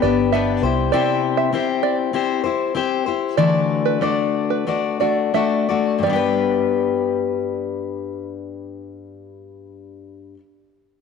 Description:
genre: pop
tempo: 85-100 BPM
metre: 4/4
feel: straight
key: G major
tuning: A4 = 441 Hz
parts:
  - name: fingerpicked steel-string acoustic guitar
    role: accompaniment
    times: 0.0-10.4 s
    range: G2 to D5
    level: -20 LUFS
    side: left 7 dB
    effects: none
  - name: open-back banjo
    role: arpeggios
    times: 0.0-8.1 s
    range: B4 to E5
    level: -24 LUFS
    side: right 10 dB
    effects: none
  - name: vintage muted fingered electric bass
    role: bass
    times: 0.0-0.9 s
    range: G1 to C2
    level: -23 LUFS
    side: right 2 dB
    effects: none
room: moderate echo chamber reverb, RT60 2.6 s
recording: 1960s-style stereo with parts hard left and right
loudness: -18 LUFS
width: side -6 dB against mid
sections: 0.0-6.0 A section; 6.0-8.9 B section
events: slowing down 0.9-6.0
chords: 0.0 G; 0.6 C; 3.4 Dadd9; 6.0 G

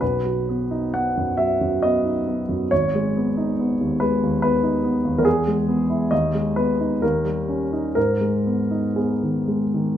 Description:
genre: classical, romantic character piece for solo piano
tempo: 58-73 BPM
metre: 3/4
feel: rubato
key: G# minor from 5.3 s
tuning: A4 = 440 Hz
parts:
  - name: warm grand piano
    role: solo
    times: 0.0-10.0 s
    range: G#1 to F#5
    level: -19 LUFS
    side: equal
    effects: none
room: moderate recital hall reverb, RT60 1.3 s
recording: close, detailed microphones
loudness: -19 LUFS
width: side -10 dB against mid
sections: 0.0-10.0 A section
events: none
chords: 0.0 B; 2.7 G#m; 5.3 E; 6.1 G#m/D#; 7.0 D#7; 8.0 G#m

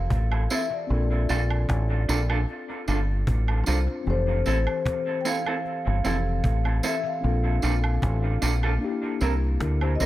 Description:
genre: lovers rock reggae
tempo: 76 BPM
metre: 4/4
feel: swing 55% on 16ths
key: F major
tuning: A4 = 440 Hz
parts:
  - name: vibraphone with soft mallets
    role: melody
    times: 0.0-10.1 s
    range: C5 to G5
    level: -31 LUFS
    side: left 2 dB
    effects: dub echo
  - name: mellow tine electric piano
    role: accompaniment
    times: 0.0-10.1 s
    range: E3 to D5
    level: -32 LUFS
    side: left 4 dB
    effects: medium stereo tremolo
  - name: deep dub fingered electric bass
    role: bass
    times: 0.0-10.1 s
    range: F1 to D2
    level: -23 LUFS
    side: equal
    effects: none
  - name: cajon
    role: drums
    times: 0.1-10.1 s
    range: none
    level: -30 LUFS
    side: equal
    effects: dub echo
  - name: woodblock and tambourine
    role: percussion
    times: 0.3-10.1 s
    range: none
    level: -35 LUFS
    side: right 4 dB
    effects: none
  - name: electric guitar through a small old amp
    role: stabs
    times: 0.5-10.1 s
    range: C4 to Bb4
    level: -31 LUFS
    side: right 3 dB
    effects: dub echo
room: small room ambience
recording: none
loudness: -22 LUFS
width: side -15 dB against mid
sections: 0.0-10.1 A section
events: none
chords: 0.0 Fmaj7; 0.9 Bbmaj7; 4.1 Fmaj7; 7.2 Bbmaj7; 8.8 C7

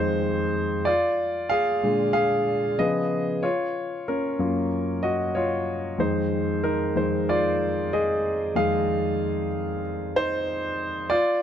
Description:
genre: soul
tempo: 94 BPM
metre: 4/4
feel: swing 58% on 16ths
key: unclear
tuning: A4 = 440 Hz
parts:
  - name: warm concert grand piano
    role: solo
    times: 0.0-11.4 s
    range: F2 to F5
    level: -22 LUFS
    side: equal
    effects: none
room: moderate spring reverb, RT60 2.3 s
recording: dark, warm production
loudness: -22 LUFS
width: side -9 dB against mid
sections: 0.0-11.4 A section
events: grand piano solo 0.0-11.4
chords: 0.0 Fm7; 0.9 Bb7; 2.8 Db9; 3.4 Gbmaj7; 6.0 Fm7

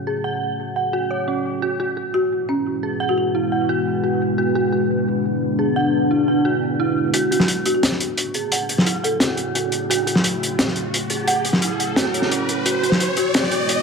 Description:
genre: half-time drum and bass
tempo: 174 BPM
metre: 4/4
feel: half-time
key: F# minor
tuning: A4 = 440 Hz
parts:
  - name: deep dark ambient pad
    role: sustained chords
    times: 0.0-13.8 s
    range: G#3 to C#5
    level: -24 LUFS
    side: left 2 dB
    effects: chorus, built-in reverb
  - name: dark detuned synth bell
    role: arpeggios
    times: 0.0-13.8 s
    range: C#4 to F#5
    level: -23 LUFS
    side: right 3 dB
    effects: chorus, phaser, low-pass filter, dub echo
  - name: folk marimba with soft mallets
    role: melody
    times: 2.1-3.2, 7.7-9.5, 13.2 s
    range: C#4 to A4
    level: -25 LUFS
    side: left 2 dB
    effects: dub echo
  - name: crunchy breakbeat drum kit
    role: drums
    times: 7.1-13.8 s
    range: hi-hat, snare drum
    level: -20 LUFS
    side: left 1 dB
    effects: none
  - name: riser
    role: sound effects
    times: 8.7-13.8 s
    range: none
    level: -27 LUFS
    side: equal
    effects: none
room: moderate lush hall reverb, RT60 2.4 s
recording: high-pass filter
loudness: -18 LUFS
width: side -5 dB against mid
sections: 0.0-7.1 A section; 7.1-13.8 B section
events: filter sweep on ambient pad 0.0-7.1, 7.1-13.8; build-up 7.1-13.8; riser 8.7-13.8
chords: 0.0 F#m; 1.6 E; 7.1 F#m; 12.7 E

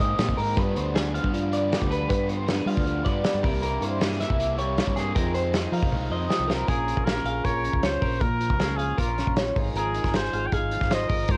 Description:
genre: math rock and midwest emo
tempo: 157 BPM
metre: 4/4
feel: straight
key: unclear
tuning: A4 = 440 Hz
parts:
  - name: electric guitar through a small old amp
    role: accompaniment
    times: 0.0-11.4 s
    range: F2 to Bb4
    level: -35 LUFS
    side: equal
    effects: cassette tape
  - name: twelve-string electric guitar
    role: arpeggios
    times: 0.0-11.4 s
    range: Ab4 to F5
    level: -32 LUFS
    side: equal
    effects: lush chorus, cassette tape, analog delay
  - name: biting overdriven guitar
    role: riff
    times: 0.0-6.7 s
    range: F2 to E4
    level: -36 LUFS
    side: equal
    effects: cassette tape
  - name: fingered electric bass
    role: bass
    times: 0.0-11.4 s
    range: Ab1 to G3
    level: -32 LUFS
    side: equal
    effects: none
  - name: loose indie drum kit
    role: drums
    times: 0.0-11.4 s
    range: hi-hat, kick drum, snare drum, toms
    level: -29 LUFS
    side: equal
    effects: cassette tape
  - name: clear trumpet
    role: melody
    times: 6.7-11.4 s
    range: F4 to G5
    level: -32 LUFS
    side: equal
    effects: none
room: moderate booth ambience, RT60 0.3 s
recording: home recording on cassette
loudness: -25 LUFS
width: mono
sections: 0.0-6.7 A section; 6.7-11.4 B section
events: drum fill 5.9-6.7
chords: 0.0 Abadd9; 0.6 G7b9; 3.4 C7b9b13; 5.1 Fm7; 6.7 Bbm7; 9.6 Fm7/Ab

